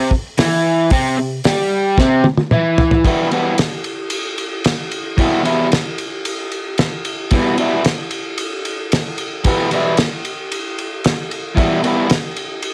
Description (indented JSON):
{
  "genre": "garage rock duo or trio",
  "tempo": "112 BPM",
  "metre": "4/4",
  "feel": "straight",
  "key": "E minor",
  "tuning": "A4 = 440 Hz",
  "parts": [
    { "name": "crunchy overdriven guitar", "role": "riff", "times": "0.0-12.1 s", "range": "E2 to G4", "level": "-17 LUFS", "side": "equal", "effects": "cassette tape" },
    { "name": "cloth-damped thuddy drum kit", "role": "drums", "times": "0.1-12.7 s", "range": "hi-hat, kick drum, ride cymbal, snare drum, toms", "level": "-20 LUFS", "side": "equal", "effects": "cassette tape" }
  ],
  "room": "little or no reverb",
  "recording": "home recording on cassette",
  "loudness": "-18 LUFS",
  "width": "mono",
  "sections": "0.0-3.0 A section; 3.0-12.7 B section",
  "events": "drum fill 2.0-3.0",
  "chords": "0.0 C5; 3.0 Em",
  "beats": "0.38 | 0.91 1.44 1.98 2.51 | 3.05 3.58 4.12 4.65 | 5.19 5.72 6.25 6.79 | 7.32 7.86 8.39 8.92 | 9.45 9.98 10.52 11.05 | 11.58 12.11 12.64"
}